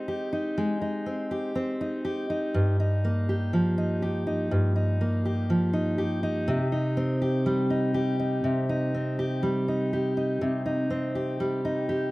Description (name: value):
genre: pop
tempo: 61 BPM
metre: 4/4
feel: straight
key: unclear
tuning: A4 = 439 Hz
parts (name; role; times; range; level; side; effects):
- fingerpicked steel-string acoustic guitar; solo; 0.0-12.1 s; G2 to G4; -24 LUFS; equal; none
room: little or no reverb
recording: recorded outdoors, with no room sound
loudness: -24 LUFS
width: side -19 dB against mid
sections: 0.0-12.1 A section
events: none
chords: 0.0 Abmaj7; 2.5 Ebadd9/G; 6.5 Cm